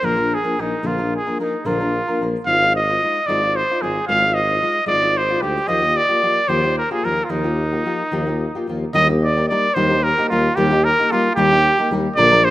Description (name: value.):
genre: mexican folk, mariachi.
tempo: 74 BPM (dotted quarters).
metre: 6/8.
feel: rubato.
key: Eb major.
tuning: A4 = 440 Hz.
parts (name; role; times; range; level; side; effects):
clear trumpet; melody; 0.0-12.5 s; Eb4 to F5; -17 LUFS; right 1 dB; none.
nylon-string guitar; accompaniment; 0.0-12.5 s; Bb2 to C5; -23 LUFS; left 2 dB; none.
mellow tuba; bass; 0.0-12.5 s; Ab1 to Eb2; -23 LUFS; equal; none.
room: moderate plate reverb, RT60 2.8 s.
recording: rough home demo mix.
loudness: -16 LUFS.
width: side -15 dB against mid.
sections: 0.0-8.9 A section; 8.9-12.5 A section.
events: none.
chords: 0.0 Bb; 2.5 Ab6; 5.7 Ebadd9; 8.9 Eb.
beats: 0.02 | 0.83 1.65 | 2.46 3.28 | 4.08 4.88 | 5.68 6.49 | 7.30 8.12 | 8.95 9.76 | 10.57 11.37 | 12.16.